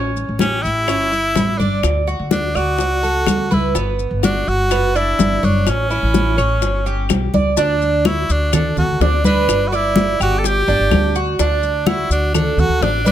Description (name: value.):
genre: latin, Cuban son and guajira.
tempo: 126 BPM.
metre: 4/4.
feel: straight.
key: D major.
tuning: A4 = 440 Hz.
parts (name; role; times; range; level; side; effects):
Cuban tres; arpeggios; 0.0-13.1 s; B3 to D5; -21 LUFS; right 4 dB; none.
upright bass; bass; 0.0-13.1 s; F#1 to D2; -20 LUFS; equal; none.
congas; percussion; 0.2-13.1 s; none; -20 LUFS; left 1 dB; none.
maracas; percussion; 0.2-13.1 s; none; -28 LUFS; left 9 dB; none.
edgy tenor saxophone; melody; 0.4-13.1 s; C#4 to A4; -20 LUFS; equal; none.
bongos; percussion; 0.4-13.1 s; none; -24 LUFS; left 8 dB; none.
claves; percussion; 0.4-12.6 s; none; -27 LUFS; left 8 dB; none.
room: little or no reverb.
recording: close, detailed microphones.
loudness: -14 LUFS.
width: side -11 dB against mid.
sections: 0.0-7.6 A section; 7.6-13.1 B section.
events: none.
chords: 0.0 A7; 1.8 D; 3.8 Gmaj7; 5.7 A7; 7.6 D; 9.5 G5; 11.4 D.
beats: 0.40 0.88 1.36 | 1.84 2.32 2.80 3.27 | 3.75 4.23 4.71 5.19 | 5.67 6.14 6.62 7.10 | 7.58 8.06 8.53 9.01 | 9.49 9.96 10.44 10.92 | 11.40 11.87 12.35 12.83.